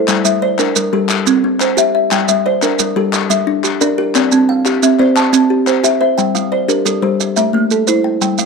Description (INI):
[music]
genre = southern african traditional, mbira-style interlocking cycle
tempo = 118 BPM (dotted quarters)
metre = 12/8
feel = straight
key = G dorian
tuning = A4 = 440 Hz
[part]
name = kalimba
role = arpeggios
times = 0.0-8.5 s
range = G3 to A5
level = -15 LUFS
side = left 10 dB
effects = none
[part]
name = kalimba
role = arpeggios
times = 0.0-8.5 s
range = G3 to A5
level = -15 LUFS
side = right 9 dB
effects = none
[part]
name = group handclap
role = percussion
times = 0.1-5.9 s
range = none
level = -22 LUFS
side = left 10 dB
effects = none
[part]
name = maracas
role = percussion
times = 0.1-8.5 s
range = none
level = -19 LUFS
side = right 12 dB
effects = none
[sound]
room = moderate spring reverb, RT60 1.2 s, small room reverb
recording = 1960s-style stereo with parts hard left and right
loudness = -11 LUFS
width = side -4 dB against mid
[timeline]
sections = 0.0-6.2 A section; 6.2-8.5 A section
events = none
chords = 0.1 Gm; 1.1 C; 2.1 Gm; 4.2 C; 6.2 Gm; 7.2 Am